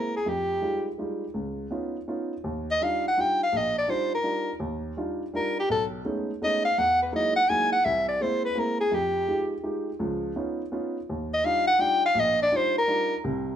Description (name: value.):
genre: jazz.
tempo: 167 BPM.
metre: 3/4.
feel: swing 66% on 8ths.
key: Eb major.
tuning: A4 = 441 Hz.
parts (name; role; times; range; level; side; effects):
warm soprano saxophone; melody; 0.0-13.2 s; G4 to G#5; -23 LUFS; left 1 dB; none.
warm baby grand piano; accompaniment; 0.0-13.6 s; Bb1 to G4; -30 LUFS; right 1 dB; none.
room: moderate large studio reverb, RT60 1.2 s.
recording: band playing live in one room.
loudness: -24 LUFS.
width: side -9 dB against mid.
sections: 0.0-4.6 A section; 4.6-13.2 A section.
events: none.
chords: 0.3 Fm9; 1.3 Db9; 2.4 Ebmaj9; 5.7 B13; 6.8 Emaj9#11; 7.8 C7b13; 8.9 Fm9; 10.0 Db9; 11.1 Ebmaj9.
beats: | 0.25 0.62 0.98 | 1.34 1.71 2.07 | 2.43 2.79 3.15 | 3.52 3.88 4.24 | 4.60 4.96 5.32 | 5.68 6.04 6.40 | 6.76 7.12 7.48 | 7.84 8.20 8.56 | 8.92 9.28 9.64 | 10.00 10.36 10.72 | 11.08 11.44 11.80 | 12.16 12.52 12.88 | 13.23.